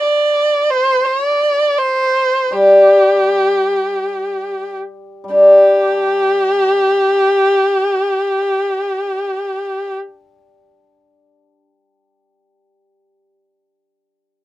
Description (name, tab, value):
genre	chinese traditional, Chinese chamber ensemble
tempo	free time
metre	none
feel	none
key	unclear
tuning	A4 = 440 Hz
part	rich erhu	melody	0.0-9.9 s	G4 to D5	-14 LUFS	equal	none
part	hammered dulcimer	accompaniment	2.5-13.3 s	G3 to G4	-11 LUFS	left 1 dB	none
room	little or no reverb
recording	close, detailed microphones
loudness	-12 LUFS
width	side -16 dB against mid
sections	0.0-5.4 A section; 5.4-9.6 B section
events	slowing down 0.0-5.4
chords	none